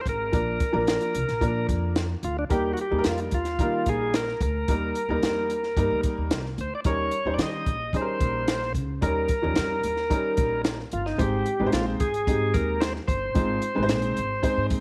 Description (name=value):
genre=uptempo 1960s-style soul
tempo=111 BPM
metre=4/4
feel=straight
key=unclear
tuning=A4 = 439 Hz
part: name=bright tonewheel organ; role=melody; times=0.0-14.7 s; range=D4 to Eb5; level=-30 LUFS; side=equal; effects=overdrive, slow rotary speaker
part: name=upright bass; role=bass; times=0.1-14.8 s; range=G1 to Eb3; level=-33 LUFS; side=equal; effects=none
part: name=compact cocktail drum kit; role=drums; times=0.1-14.8 s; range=hi-hat, kick drum, snare drum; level=-30 LUFS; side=equal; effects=none
part: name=clear upright piano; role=accompaniment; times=0.3-14.8 s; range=F3 to C5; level=-31 LUFS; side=equal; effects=none
room=light reverb, studio reverb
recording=none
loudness=-26 LUFS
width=mono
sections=0.0-14.8 A section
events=none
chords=0.0 Bb; 2.5 Eb; 6.9 Eb7; 11.2 Ab